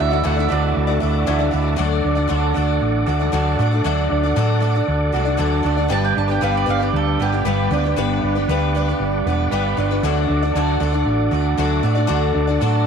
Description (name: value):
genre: rock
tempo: 116 BPM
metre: 4/4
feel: straight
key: D major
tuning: A4 = 441 Hz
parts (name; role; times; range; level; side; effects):
- bowl-back mandolin; second line; 0.0-1.0, 5.9-8.7 s; G4 to A5; -25 LUFS; right 8 dB; none
- picked twelve-string acoustic guitar; accompaniment; 0.0-12.9 s; G2 to D5; -23 LUFS; left 13 dB; none
- tonewheel organ; sustained chords; 0.0-12.9 s; F#4 to D6; -29 LUFS; equal; chorus vibrato, fast rotary speaker
- electric guitar through a small old amp; riff; 0.0-12.9 s; D3 to B4; -22 LUFS; right 12 dB; analog chorus
- hollow-body short-scale fingered electric bass; bass; 0.0-12.9 s; E1 to A2; -20 LUFS; left 1 dB; none
room: light reverb, small room ambience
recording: 1960s-style stereo with parts hard left and right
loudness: -16 LUFS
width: side -6 dB against mid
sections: 0.0-1.8 A section; 1.8-12.9 B section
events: none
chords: 0.0 Dadd9; 1.8 D; 5.9 G; 10.0 D